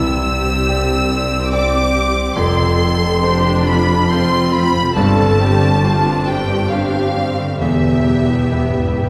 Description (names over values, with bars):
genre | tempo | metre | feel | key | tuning
cinematic, emotional film score for orchestra | 69 BPM | 3/4 | rubato | unclear | A4 = 439 Hz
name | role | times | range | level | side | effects
rich studio violin section | melody | 0.0-9.1 s | E5 to E6 | -26 LUFS | equal | none
clear studio violin section | second line | 0.0-9.1 s | E5 to E6 | -25 LUFS | equal | none
clear grand piano | accompaniment | 0.0-9.1 s | E1 to D5 | -22 LUFS | equal | none
warm studio viola section | accompaniment | 0.0-9.1 s | B3 to A4 | -23 LUFS | equal | none
concert harp | arpeggios | 0.0-9.1 s | E2 to D6 | -25 LUFS | equal | none
rich studio cello section | bass | 0.0-9.1 s | C2 to G2 | -24 LUFS | equal | none
rich studio double bass section | bass | 0.0-9.1 s | E1 to C2 | -24 LUFS | equal | none
timpani | percussion | 7.6-9.1 s | E2 | -27 LUFS | equal | none
room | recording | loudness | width
wet scoring stage reverb, RT60 1.8 s | heard from further back in the room | -16 LUFS | mono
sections
0.0-9.1 A section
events
timpani fill 7.6-9.1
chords
0.0 Cadd9; 2.4 F; 5.0 Gsus4; 7.6 Em